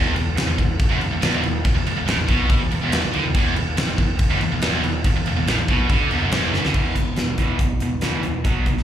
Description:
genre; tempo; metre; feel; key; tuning
hard rock; 141 BPM; 4/4; straight; unclear; A4 = 435 Hz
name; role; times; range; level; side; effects
distorted electric guitar; riff; 0.0-8.8 s; E2 to B3; -28 LUFS; left 8 dB; distortion, slapback echo
scooped high-gain guitar; riff; 0.0-6.7 s; E2 to D3; -27 LUFS; left 1 dB; distortion
tight distorted guitar; riff; 0.0-8.8 s; E2 to B3; -26 LUFS; right 10 dB; distortion, slapback echo
overdriven picked electric bass; bass; 0.0-8.8 s; E1 to D2; -25 LUFS; equal; none
huge arena drum kit; drums; 0.2-8.8 s; crash cymbal, hi-hat, kick drum, snare drum; -21 LUFS; equal; none
room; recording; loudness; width
light reverb; live gig heard through the venue's PA, club reverb; -18 LUFS; side -10 dB against mid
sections
0.0-6.8 A section; 6.8-8.8 B section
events
drum fill 6.5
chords
0.0 E5

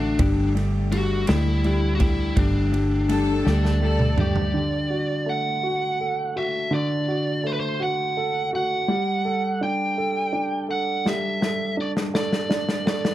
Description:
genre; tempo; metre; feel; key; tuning
six-eight pop ballad; 55 BPM (dotted quarters); 6/8; straight; unclear; A4 = 441 Hz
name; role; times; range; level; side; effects
biting lead guitar; melody; 0.0-13.1 s; D4 to G5; -26 LUFS; equal; overdrive
warm upright piano; accompaniment; 0.0-13.1 s; D3 to A4; -26 LUFS; equal; none
direct-recorded clean electric guitar; arpeggios; 0.0-4.5 s; G3 to G4; -33 LUFS; left 4 dB; slapback echo
vintage muted fingered electric bass; bass; 0.0-4.5 s; G1 to D2; -22 LUFS; equal; none
natural country drum kit; drums; 0.2-4.5, 11.1-13.1 s; kick drum, ride cymbal, snare drum, toms; -26 LUFS; equal; none
warm studio violin section; second line; 3.1-4.5 s; G4 to A4; -31 LUFS; left 1 dB; none
room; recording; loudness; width
small room reverb; dark, warm production; -21 LUFS; side -14 dB against mid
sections
0.0-4.5 A section; 4.5-13.1 A section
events
drum fill 3.5-4.5, 11.1-13.1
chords
0.2 Gsus2; 4.5 D; 8.9 Gsus2

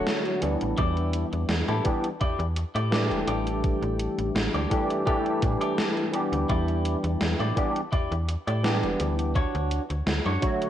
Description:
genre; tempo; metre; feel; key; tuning
vaporwave; 84 BPM; 4/4; swing 53% on 16ths; E dorian; A4 = 440 Hz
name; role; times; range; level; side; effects
barky tine electric piano; accompaniment; 0.0-10.7 s; D3 to C#5; -28 LUFS; equal; ensemble chorus, analog delay
clean electric guitar; riff; 0.0-10.7 s; D4 to D5; -32 LUFS; left 1 dB; wide subtle chorus, analog delay
slap-like FM bass; bass; 0.0-10.4 s; E1 to A2; -28 LUFS; equal; none
gated 80s digital drum machine; drums; 0.1-10.7 s; hi-hat, snare drum; -30 LUFS; equal; gated reverb, gated reverb snare, small room reverb
electronic kick drum; drums; 0.8-10.6 s; none; -27 LUFS; equal; small room reverb
room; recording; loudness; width
light reverb; cassette tape; -24 LUFS; side -11 dB against mid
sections
0.0-10.7 A section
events
none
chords
0.0 Dmaj7; 0.8 Em7; 3.3 A7sus4; 6.5 Em7; 9.4 Dmaj7

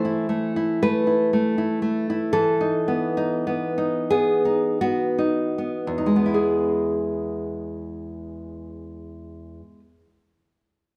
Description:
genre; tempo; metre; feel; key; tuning
romantic piece for solo classical guitar; 24-40 BPM (dotted quarters); 6/8; rubato; E major; A4 = 440 Hz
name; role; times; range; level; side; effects
nylon-string guitar; solo; 0.0-10.1 s; E2 to C5; -24 LUFS; equal; none
room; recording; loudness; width
moderate recital hall reverb, RT60 1.7 s; none; -23 LUFS; mono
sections
0.0-6.3 A section; 6.3-10.6 B section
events
slowing down 0.0-6.3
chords
0.0 Am/E; 2.3 B7/E; 6.3 E

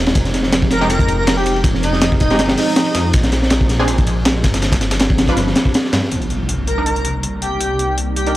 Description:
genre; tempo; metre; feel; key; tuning
drum and bass, jungle; 161 BPM; 4/4; swing 54% on 16ths; C minor; A4 = 438 Hz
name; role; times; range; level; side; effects
ethereal airy pad; sustained chords; 0.0-8.4 s; F3 to Eb4; -25 LUFS; equal; ensemble chorus, built-in reverb, vintage 12-bit sampler grit
detuned saw bass; bass; 0.0-8.4 s; Eb1 to G2; -20 LUFS; equal; tube saturation
crunchy breakbeat drum kit; drums; 0.1-6.1 s; hi-hat, kick drum, ride cymbal, snare drum; -16 LUFS; equal; none
dusty soul sampler-style drum kit; drums; 0.2-8.3 s; hi-hat, snare drum; -26 LUFS; left 1 dB; high-pass filter on hats, high-pass filter on snare
airy dreamy lead; melody; 0.7-3.1, 6.7-8.4 s; Eb4 to Bb4; -21 LUFS; equal; chorus, dub echo
orchestra-hit-like synth stab; stabs; 0.8-8.3 s; Ab3 to B4; -24 LUFS; right 1 dB; built-in reverb, cassette tape, dub echo
impact; sound effects; 6.1-7.6 s; none; -26 LUFS; equal; none
room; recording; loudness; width
small room ambience; dry, gritty hardware recording; -14 LUFS; side -15 dB against mid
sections
0.0-6.1 A section; 6.1-8.4 B section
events
drop 0.0-6.1; impact 6.1-7.6; filter sweep on ambient pad 6.1-8.4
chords
0.2 Fm7; 3.1 Bb7; 4.6 G7; 6.1 Cm7

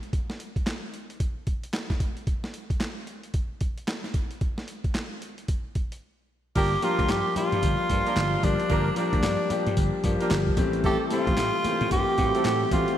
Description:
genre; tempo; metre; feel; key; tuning
R&B, new jack swing; 112 BPM; 4/4; swing 62% on 16ths; G dorian; A4 = 440 Hz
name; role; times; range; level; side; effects
boom bap sampler-style drum kit; drums; 0.0-13.0 s; crash cymbal, handclaps, hi-hat, kick drum, snare drum, tambourine; -28 LUFS; equal; none
raspy tenor saxophone; melody; 6.6-13.0 s; D4 to G4; -27 LUFS; right 1 dB; analog delay
mellow horn section; stabs; 6.6-12.5 s; A3 to Bb4; -33 LUFS; right 2 dB; analog delay
vintage slap bass; bass; 6.6-12.8 s; G1 to A2; -28 LUFS; equal; none
warm concert grand piano; accompaniment; 6.8-13.0 s; C3 to G4; -27 LUFS; left 3 dB; none
room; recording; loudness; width
moderate lush hall reverb, RT60 2.0 s, small room ambience; dreamy mix soaked in reverb, faint mains hum; -24 LUFS; side -10 dB against mid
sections
0.0-6.6 A section; 6.6-13.0 B section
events
break 6.0-6.6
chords
0.0 N.C.; 6.6 Gm7; 10.6 Am7

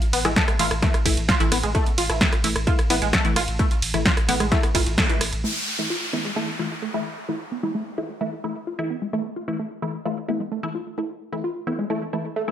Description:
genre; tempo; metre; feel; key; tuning
driving peak-time techno; 130 BPM; 4/4; straight; unclear; A4 = 439 Hz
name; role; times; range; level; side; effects
saturated sub bass; bass; 0.0-5.4 s; A1; -29 LUFS; equal; sidechain pumping, low-pass filter
punchy analog drum machine; drums; 0.0-5.4 s; hi-hat, ride cymbal, rim click, snare drum; -23 LUFS; right 1 dB; none
tight sequenced synth; riff; 0.1-12.4 s; G#3 to F4; -28 LUFS; right 1 dB; chorus, overdrive, cassette tape, sidechain pumping, digital delay
filtered dub chord stab; stabs; 0.2-12.5 s; E3 to E4; -28 LUFS; left 1 dB; phaser, sidechain pumping, digital delay
electronic kick drum; drums; 0.4-5.1 s; none; -22 LUFS; equal; none
downlifter; sound effects; 5.4-9.1 s; none; -30 LUFS; equal; none
room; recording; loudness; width
moderate plate reverb, RT60 1.0 s, digital ambience; bright 1980s-style digital production; -21 LUFS; side -10 dB against mid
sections
0.0-5.4 A section; 5.4-12.5 B section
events
drop 0.0-5.4; band accent 5.0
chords
0.0 A5

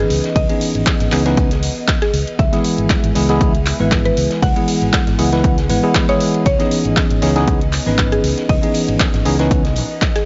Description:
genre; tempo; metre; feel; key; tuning
deep house; 118 BPM; 4/4; swing 54% on 16ths; C# minor; A4 = 440 Hz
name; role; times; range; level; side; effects
mallet-like synth pluck; melody; 0.0-10.3 s; G#4 to F#5; -26 LUFS; equal; chorus, tape echo
hollow soft pad; sustained chords; 0.0-10.3 s; E3 to F#5; -30 LUFS; equal; chorus, sidechain pumping
bell-like tine electric piano; stabs; 0.0-9.6 s; E3 to B4; -20 LUFS; equal; sidechain pumping, analog delay
fingered electric bass; bass; 0.0-9.8 s; G#1 to C#2; -22 LUFS; equal; tube saturation, sidechain pumping
loose indie drum kit; drums; 0.1-10.3 s; hi-hat, ride cymbal, snare drum; -34 LUFS; equal; sidechain pumping on cymbals, high-pass filter on cymbals, sidechain pumping on hats, high-pass filter on hats, high-pass filter on snare, high-pass filter on room
punchy analog drum machine; drums; 0.1-10.2 s; handclaps, hi-hat; -25 LUFS; equal; overdrive
electronic kick drum; drums; 0.4-10.1 s; none; -20 LUFS; equal; overdrive
room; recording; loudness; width
digital ambience; nothing above 7.6 kHz; -16 LUFS; mono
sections
0.0-10.3 A section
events
none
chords
0.0 C#m9; 2.4 E; 6.5 C#m9

